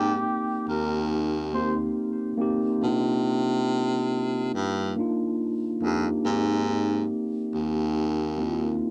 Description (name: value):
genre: lo-fi hip hop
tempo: 70 BPM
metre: 4/4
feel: swing 61% on 16ths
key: unclear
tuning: A4 = 436 Hz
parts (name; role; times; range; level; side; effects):
- trumpet with cup mute; melody; 0.0-1.8 s; G4 to C5; -33 LUFS; equal; tape echo
- mellow tine electric piano; accompaniment; 0.0-8.9 s; Bb3 to G4; -28 LUFS; equal; none
- breathy baritone saxophone; bass; 0.0-8.8 s; Eb2 to C3; -30 LUFS; equal; none
room: light reverb, small room ambience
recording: dark, warm production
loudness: -26 LUFS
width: mono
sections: 0.0-8.9 A section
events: none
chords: 0.0 Abmaj7 (rootless); 2.8 Cm11; 6.2 Abmaj7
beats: 0.25 1.10 1.96 | 2.82 3.68 4.53 5.39 | 6.25 7.11 7.96 8.82